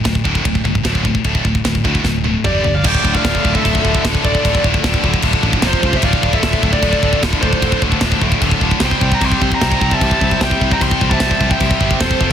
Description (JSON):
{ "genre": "heavy metal", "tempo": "151 BPM", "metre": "4/4", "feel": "straight", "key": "D minor", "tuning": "A4 = 438 Hz", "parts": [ { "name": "heavy high-gain guitar", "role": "riff", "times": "0.0-12.3 s", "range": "D2 to C4", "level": "-20 LUFS", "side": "left 12 dB", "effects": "distortion" }, { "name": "heavy high-gain guitar", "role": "riff", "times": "0.0-12.3 s", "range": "D2 to C4", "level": "-22 LUFS", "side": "right 13 dB", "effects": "distortion" }, { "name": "picked electric bass", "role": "bass", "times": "0.0-12.3 s", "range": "D1 to D2", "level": "-20 LUFS", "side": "equal", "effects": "none" }, { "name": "tight metal drum kit", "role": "drums", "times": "0.1-12.3 s", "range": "crash cymbal, kick drum, ride cymbal, snare drum, toms", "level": "-18 LUFS", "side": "equal", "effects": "none" }, { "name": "high-gain lead guitar", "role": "melody", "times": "2.5-12.3 s", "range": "C5 to C6", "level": "-21 LUFS", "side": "equal", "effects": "distortion, ping-pong delay" }, { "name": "high-gain lead guitar", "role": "second line", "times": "2.5-12.3 s", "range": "F4 to G5", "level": "-26 LUFS", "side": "right 3 dB", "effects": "distortion, ping-pong delay" }, { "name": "warm studio string section", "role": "sustained chords", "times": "2.8-12.3 s", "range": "C3 to F5", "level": "-30 LUFS", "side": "left 1 dB", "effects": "none" }, { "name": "high-gain distorted guitar", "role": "riff", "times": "2.8-12.3 s", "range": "D2 to C4", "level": "-24 LUFS", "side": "left 1 dB", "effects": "distortion" } ], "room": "small room ambience", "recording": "dense, heavily limited modern master", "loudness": "-13 LUFS", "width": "side -9 dB against mid", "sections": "0.0-2.8 A section; 2.8-12.3 B section", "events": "drum fill 2.0-2.8", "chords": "0.0 D5; 2.4 G5; 2.8 Dm; 5.6 F5; 6.0 Dm; 8.8 C5; 9.2 C", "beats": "0.05 0.45 0.85 | 1.25 1.65 2.05 2.45 | 2.85 3.25 3.64 4.04 | 4.44 4.84 5.24 5.63 | 6.03 6.43 6.83 7.22 | 7.62 8.02 8.42 8.82 | 9.22 9.62 10.01 10.41 | 10.81 11.21 11.61 12.01" }